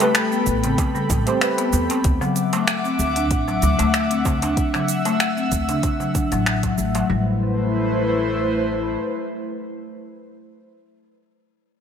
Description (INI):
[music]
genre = organic downtempo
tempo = 95 BPM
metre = 4/4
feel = swing 54% on 16ths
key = A dorian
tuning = A4 = 440 Hz
[part]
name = deep mellow chord stab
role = accompaniment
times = 0.0-2.1 s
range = A3 to C5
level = -24 LUFS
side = right 2 dB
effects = chorus, sidechain pumping, ping-pong delay
[part]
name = airy breathy pad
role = sustained chords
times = 0.0-10.4 s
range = A3 to E6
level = -24 LUFS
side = equal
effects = chorus, sidechain pumping
[part]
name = marimba with soft mallets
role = arpeggios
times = 0.0-7.4 s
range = F#3 to D4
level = -24 LUFS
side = left 4 dB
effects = low-pass filter, ping-pong delay
[part]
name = organic electronic drum kit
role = drums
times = 0.0-7.1 s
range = finger snaps, hi-hat, shaker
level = -24 LUFS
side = equal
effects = none
[part]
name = darbuka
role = percussion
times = 0.0-7.1 s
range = none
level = -30 LUFS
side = right 3 dB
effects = none
[part]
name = upright bass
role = bass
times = 0.5-8.9 s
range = A1 to E2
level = -24 LUFS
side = equal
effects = none
[part]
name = electronic kick drum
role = drums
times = 0.5-6.8 s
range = none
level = -23 LUFS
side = equal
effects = none
[sound]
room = light reverb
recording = none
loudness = -18 LUFS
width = side -8 dB against mid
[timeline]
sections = 0.0-7.1 A section; 7.1-9.6 B section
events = none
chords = 0.0 Am9; 2.0 Dadd9; 7.1 Amadd9